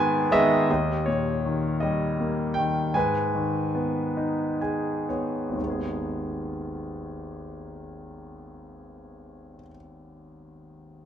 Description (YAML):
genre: classical, lyrical solo piano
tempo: 39-54 BPM (dotted quarters)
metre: 6/8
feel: rubato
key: G# minor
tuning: A4 = 438 Hz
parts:
  - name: bright grand piano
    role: solo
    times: 0.0-11.1 s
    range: G#1 to G#5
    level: -24 LUFS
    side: equal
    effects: none
room: moderate recital hall reverb, RT60 1.4 s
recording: dark, warm production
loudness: -24 LUFS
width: side -9 dB against mid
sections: 0.7-5.6 A section; 5.6-8.6 B section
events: grand piano fill 0.0-0.7, 4.2-5.6; slowing down 0.7-5.6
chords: 0.0 G#m; 0.7 D#7; 3.0 G#m